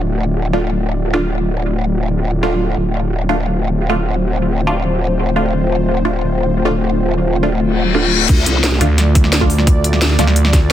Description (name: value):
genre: dark technical drum and bass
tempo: 174 BPM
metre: 4/4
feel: straight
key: D minor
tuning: A4 = 440 Hz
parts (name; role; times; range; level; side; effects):
- dark analog pad; sustained chords; 0.0-10.7 s; A3 to D5; -20 LUFS; left 1 dB; chorus, sidechain pumping
- growl bass; bass; 0.0-8.8 s; D1 to D2; -18 LUFS; equal; chorus, overdrive
- filtered dub chord stab; stabs; 0.5-10.3 s; A3 to F4; -21 LUFS; right 1 dB; phaser, dub echo
- reverse cymbal; sound effects; 7.7-8.3 s; none; -18 LUFS; left 8 dB; none
- drum and bass drum kit; drums; 8.3-10.6 s; crash cymbal, hi-hat, snare drum; -17 LUFS; left 1 dB; low-pass filter on hats, low-pass filter on snare, low-pass filter on cymbals
- electronic kick drum; drums; 8.3-10.6 s; none; -12 LUFS; equal; none
- growling FM bass; bass; 8.8-10.7 s; D2; -14 LUFS; equal; none
room: light reverb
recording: dense, heavily limited modern master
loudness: -13 LUFS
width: side -11 dB against mid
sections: 0.0-8.3 A section; 8.3-10.7 B section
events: filter sweep on analog synth pad 0.0-8.3; reverse cymbal 7.7-8.3; drop 8.3-10.7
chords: 0.0 Dm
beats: | 0.01 0.36 0.70 1.05 | 1.40 1.74 2.08 2.43 | 2.77 3.12 3.46 3.81 | 4.15 4.50 4.84 5.19 | 5.53 5.88 6.22 6.57 | 6.91 7.26 7.60 7.95 | 8.29 8.64 8.98 9.33 | 9.67 10.02 10.36 10.71